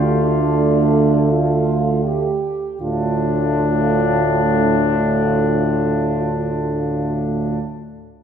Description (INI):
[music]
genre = classical, hymn-like piece for brass band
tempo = free time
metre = none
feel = none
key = D minor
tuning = A4 = 441 Hz
[part]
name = mellow flugelhorn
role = melody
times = 0.0-7.6 s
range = D4 to F4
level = -22 LUFS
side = left 5 dB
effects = none
[part]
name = mellow French horn section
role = second line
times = 0.0-7.6 s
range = D4 to G4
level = -23 LUFS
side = right 6 dB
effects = none
[part]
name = clear trombone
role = accompaniment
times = 0.0-7.6 s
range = A2 to D3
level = -24 LUFS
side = right 2 dB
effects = none
[part]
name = mellow euphonium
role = accompaniment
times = 0.0-7.6 s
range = A3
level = -22 LUFS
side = equal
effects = none
[part]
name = mellow tuba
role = bass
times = 0.0-7.6 s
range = D2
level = -21 LUFS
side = right 1 dB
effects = none
[sound]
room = wet scoring stage reverb, RT60 1.7 s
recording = recorded in a church or concert hall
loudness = -16 LUFS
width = side -8 dB against mid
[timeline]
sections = 0.0-2.8 A section; 2.8-7.2 B section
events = slowing down 0.0-2.8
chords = 0.0 Dm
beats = free time